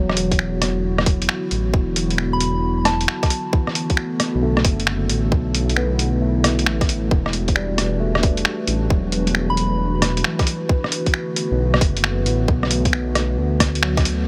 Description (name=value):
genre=future garage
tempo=134 BPM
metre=4/4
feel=swing 66% on 16ths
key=unclear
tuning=A4 = 440 Hz
part: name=overdriven tine electric piano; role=accompaniment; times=0.0-14.3 s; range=D3 to B3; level=-29 LUFS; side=equal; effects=phaser, sidechain pumping, dub echo
part: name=warbly tape-like pad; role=sustained chords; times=0.0-14.2 s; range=D3 to B4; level=-29 LUFS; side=equal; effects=chorus, built-in reverb, sidechain pumping
part: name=dark detuned saw bass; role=bass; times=0.0-14.3 s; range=E1 to D2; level=-24 LUFS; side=equal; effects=sidechain pumping
part: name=lo-fi sampler-style drum kit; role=drums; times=0.1-14.2 s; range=finger snaps, hi-hat, rim click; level=-23 LUFS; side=equal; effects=none
part: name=electronic kick drum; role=drums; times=0.3-14.0 s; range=none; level=-21 LUFS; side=equal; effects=overdrive
part: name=soft synth bell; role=melody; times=2.3-3.5, 9.5-10.0 s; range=A5 to B5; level=-29 LUFS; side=equal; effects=chorus, digital delay
room=light reverb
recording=none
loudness=-20 LUFS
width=mono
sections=0.0-14.3 A section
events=band accent 13.8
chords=0.0 Esus2; 3.5 Bm7; 7.1 Em9; 10.7 Bm7